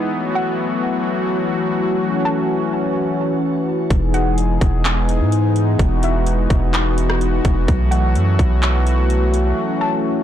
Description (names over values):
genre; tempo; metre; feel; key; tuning
hip hop, atmospheric cloud-rap; 127 BPM; 4/4; half-time; unclear; A4 = 444 Hz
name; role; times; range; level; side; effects
warm analog pad; sustained chords; 0.0-10.2 s; E3 to G#4; -19 LUFS; left 1 dB; chorus, sidechain pumping
warbly dusty pluck; melody; 0.4-10.0 s; E5 to A5; -28 LUFS; left 1 dB; chorus, ping-pong delay
long sustained 808-style bass; bass; 3.9-9.5 s; E1 to G#2; -17 LUFS; equal; none
trap drum kit; drums; 3.9-9.4 s; handclaps, hi-hat, kick drum, rim click; -20 LUFS; equal; overdrive
room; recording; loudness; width
digital ambience; blown-out, overdriven recording, overdrive; -16 LUFS; side -10 dB against mid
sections
0.0-10.2 A section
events
break 9.6-10.2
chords
0.1 B7sus4; 3.9 Emaj7; 7.7 B7sus4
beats
| 0.12 0.60 1.07 1.54 | 2.01 2.49 2.96 3.43 | 3.90 4.38 4.85 5.32 | 5.79 6.27 6.74 7.21 | 7.68 8.16 8.63 9.10 | 9.57 10.05